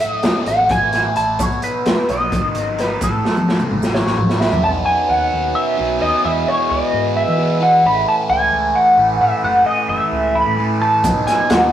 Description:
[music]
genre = psychedelic rock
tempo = 261 BPM (eighths)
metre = 7/8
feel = straight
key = A lydian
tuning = A4 = 437 Hz
[part]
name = lightly driven lead guitar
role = melody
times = 0.0-11.7 s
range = A4 to B5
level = -16 LUFS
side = equal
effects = wah
[part]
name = fuzz guitar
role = riff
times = 0.0-11.7 s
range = E2 to E4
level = -24 LUFS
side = equal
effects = distortion, phaser
[part]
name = crunchy breakbeat drum kit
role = drums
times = 0.0-4.6, 11.0-11.6 s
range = hi-hat, kick drum, snare drum, toms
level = -18 LUFS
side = equal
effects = none
[part]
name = maracas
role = percussion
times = 0.0-4.6, 11.0-11.6 s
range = none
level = -38 LUFS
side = right 4 dB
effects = none
[part]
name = deep dub picked electric bass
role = bass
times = 0.5-11.7 s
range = F#1 to E3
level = -26 LUFS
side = equal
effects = none
[part]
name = hand-pumped harmonium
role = sustained chords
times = 4.6-11.7 s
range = D#3 to G#5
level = -23 LUFS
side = right 3 dB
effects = none
[sound]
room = wet stone room reverb, RT60 1.3 s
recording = rough rehearsal-room recording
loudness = -14 LUFS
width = side -11 dB against mid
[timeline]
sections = 0.0-4.6 A section; 4.6-11.7 B section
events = drum fill 3.2-4.6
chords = 0.0 A; 1.4 B; 3.0 A; 4.6 Badd9; 6.2 E; 7.8 Aadd9; 11.0 Badd9

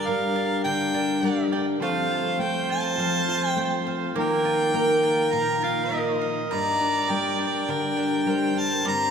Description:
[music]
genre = acoustic folk duo or small band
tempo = 102 BPM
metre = 4/4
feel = straight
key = G minor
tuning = A4 = 440 Hz
[part]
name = warm harmonica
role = melody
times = 0.0-9.1 s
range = F5 to Bb5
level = -26 LUFS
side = equal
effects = none
[part]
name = warm fiddle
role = second line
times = 0.0-9.1 s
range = Bb4 to Eb5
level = -29 LUFS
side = right 3 dB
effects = none
[part]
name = fingerpicked steel-string acoustic guitar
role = accompaniment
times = 0.0-9.1 s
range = G2 to Bb4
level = -26 LUFS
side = left 3 dB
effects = none
[part]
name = mellow tonewheel organ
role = sustained chords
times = 0.0-9.1 s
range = F3 to Bb4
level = -34 LUFS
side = left 1 dB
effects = slow rotary speaker
[part]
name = mandolin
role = arpeggios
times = 0.0-9.1 s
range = G3 to G5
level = -31 LUFS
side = right 6 dB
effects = none
[sound]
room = wet church reverb, RT60 3.9 s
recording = recorded in a church or concert hall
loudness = -22 LUFS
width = side -7 dB against mid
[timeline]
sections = 0.0-9.1 A section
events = none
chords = 0.0 Gm; 1.8 F; 4.2 Ebsus2; 6.5 Gm

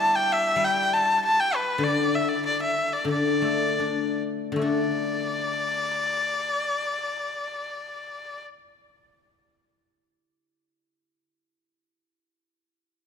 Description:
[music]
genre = chinese traditional, Chinese chamber ensemble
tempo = 67-100 BPM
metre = 2/4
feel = rubato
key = D zhi mode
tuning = A4 = 441 Hz
[part]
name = clear erhu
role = melody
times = 0.0-8.4 s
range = B4 to A5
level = -24 LUFS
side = left 1 dB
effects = none
[part]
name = hammered dulcimer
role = second line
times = 0.0-2.5 s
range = A3 to G4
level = -42 LUFS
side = right 6 dB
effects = none
[part]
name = guzheng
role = accompaniment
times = 0.0-11.1 s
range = D3 to D4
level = -27 LUFS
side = left 4 dB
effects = none
[sound]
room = moderate concert hall reverb, RT60 2.4 s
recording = minimal, uncompressed stereo recording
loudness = -22 LUFS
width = side -7 dB against mid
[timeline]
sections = 0.0-4.6 A section; 4.6-8.1 B section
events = slowing down 1.8-4.6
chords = none

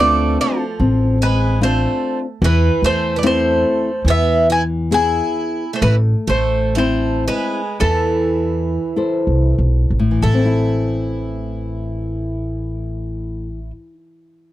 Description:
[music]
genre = fado-style ballad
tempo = 46-74 BPM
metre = 4/4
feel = rubato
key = A harmonic minor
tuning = A4 = 440 Hz
[part]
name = mandolin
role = melody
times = 0.0-13.7 s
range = A4 to G#5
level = -20 LUFS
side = equal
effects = none
[part]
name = picked twelve-string acoustic guitar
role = second line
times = 0.0-13.7 s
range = E3 to E4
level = -24 LUFS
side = right 6 dB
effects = none
[part]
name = nylon-string guitar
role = accompaniment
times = 0.0-13.9 s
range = A2 to C5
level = -21 LUFS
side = left 3 dB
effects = none
[part]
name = upright bass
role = bass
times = 0.0-13.7 s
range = A1 to E2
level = -19 LUFS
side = equal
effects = none
[sound]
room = little or no reverb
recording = dry, close 1970s-style studio recording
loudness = -15 LUFS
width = side -14 dB against mid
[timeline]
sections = 0.0-10.2 A section; 10.2-14.5 B section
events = slowing down 2.4-10.2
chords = 0.0 Dm7; 2.4 Am/E; 4.1 E; 5.8 Am

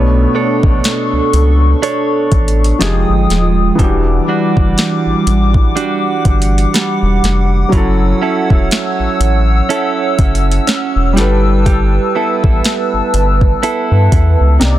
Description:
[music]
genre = contemporary R&B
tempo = 61 BPM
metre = 4/4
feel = swing 58% on 16ths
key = unclear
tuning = A4 = 440 Hz
[part]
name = felt-muted upright piano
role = accompaniment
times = 0.0-14.8 s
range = B2 to D5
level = -19 LUFS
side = left 2 dB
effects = none
[part]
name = hollow soft pad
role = sustained chords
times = 0.0-14.8 s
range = G3 to E6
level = -18 LUFS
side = left 1 dB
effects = chorus
[part]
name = direct-recorded clean electric guitar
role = arpeggios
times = 0.0-14.8 s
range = C3 to C#5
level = -18 LUFS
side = right 7 dB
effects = none
[part]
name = round analog bass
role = bass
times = 0.0-14.8 s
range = Eb1 to G2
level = -13 LUFS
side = equal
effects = none
[part]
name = smooth R&B drum kit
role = drums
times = 0.6-14.8 s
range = hi-hat, kick drum, snare drum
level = -14 LUFS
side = equal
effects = none
[sound]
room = little or no reverb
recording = dense, heavily limited modern master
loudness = -10 LUFS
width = side -13 dB against mid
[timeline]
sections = 0.0-14.8 A section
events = none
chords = 0.0 Bm9; 2.8 Fm9; 3.8 Em9; 7.7 A6/E; 11.2 G69

